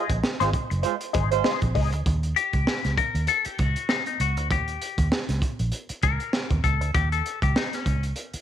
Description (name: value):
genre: funk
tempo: 98 BPM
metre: 4/4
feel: swing 56% on 16ths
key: Eb mixolydian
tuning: A4 = 436 Hz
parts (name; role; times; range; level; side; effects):
- mellow horn section; second line; 0.0-1.5 s; Ab3 to C5; -28 LUFS; right 14 dB; none
- semi-hollow electric guitar; accompaniment; 0.0-8.0 s; Db4 to Eb5; -27 LUFS; left 10 dB; wah
- vintage muted fingered electric bass; bass; 0.1-8.4 s; Gb1 to Eb2; -25 LUFS; right 1 dB; none
- crunchy breakbeat drum kit; drums; 0.1-8.4 s; hi-hat, kick drum, snare drum; -27 LUFS; right 1 dB; none
room: light reverb, small room ambience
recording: 1960s-style stereo with parts hard left and right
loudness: -22 LUFS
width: side -10 dB against mid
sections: 0.0-2.1 A section; 2.1-8.4 B section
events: band accent 0.0-2.1; clean electric guitar solo 2.1-8.4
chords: 0.0 Bb9sus4 (rootless); 2.1 Eb7